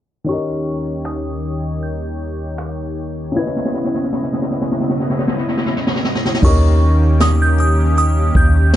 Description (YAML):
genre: contemporary R&B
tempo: 78 BPM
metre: 4/4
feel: swing 54% on 16ths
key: unclear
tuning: A4 = 440 Hz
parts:
  - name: warm concert grand piano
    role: accompaniment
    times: 0.2-8.8 s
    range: C#3 to D#5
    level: -23 LUFS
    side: left 2 dB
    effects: none
  - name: glassy synth bell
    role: melody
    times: 0.3-8.8 s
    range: C#6 to G#6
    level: -22 LUFS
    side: right 2 dB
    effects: chorus
  - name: chorused pulse-width pad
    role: sustained chords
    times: 0.3-8.8 s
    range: D#2 to D#5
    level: -23 LUFS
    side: equal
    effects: none
  - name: jazz brush drum kit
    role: drums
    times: 1.1-8.8 s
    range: crash cymbal, finger snaps, hi-hat, kick drum, snare drum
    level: -18 LUFS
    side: equal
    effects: none
  - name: long sustained 808-style bass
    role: bass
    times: 6.4-8.8 s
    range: D#2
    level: -13 LUFS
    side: equal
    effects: none
room: small room reverb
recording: dark, warm production, low-pass filter, nothing above 10.9 kHz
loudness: -15 LUFS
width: side -12 dB against mid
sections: 0.3-6.4 A section; 6.4-8.8 B section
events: filter sweep 0.3-6.4; drum fill 3.4-6.4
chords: 0.3 D#7; 3.4 C#m9; 6.4 D#7